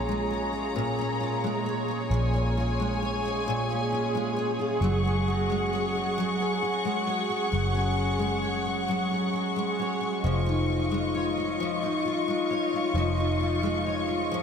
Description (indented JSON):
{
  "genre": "six-eight pop ballad",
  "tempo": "44 BPM (dotted quarters)",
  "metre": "6/8",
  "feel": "straight",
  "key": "Bb minor",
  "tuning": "A4 = 440 Hz",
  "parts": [
    { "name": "picked steel-string acoustic guitar", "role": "accompaniment", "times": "0.0-14.4 s", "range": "Bb2 to Db5", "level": "-29 LUFS", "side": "equal", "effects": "double-tracked left and right" },
    { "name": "warm studio string section", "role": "sustained chords", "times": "0.0-14.4 s", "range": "F4 to Db6", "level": "-29 LUFS", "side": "left 1 dB", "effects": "none" },
    { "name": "vintage muted fingered electric bass", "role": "bass", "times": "0.0-14.4 s", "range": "F1 to Bb1", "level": "-29 LUFS", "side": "equal", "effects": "none" }
  ],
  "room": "wet cathedral reverb, RT60 5.2 s",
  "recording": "dreamy mix soaked in reverb",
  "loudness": "-25 LUFS",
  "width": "side -7 dB against mid",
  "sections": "0.0-14.4 A section",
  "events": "none",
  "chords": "0.0 Bbm7; 4.8 Gbsus2; 10.2 Dbadd9/F",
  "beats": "0.75 | 2.10 3.46 | 4.82 6.17 | 7.53 8.89 | 10.24 11.60 | 12.95 14.31"
}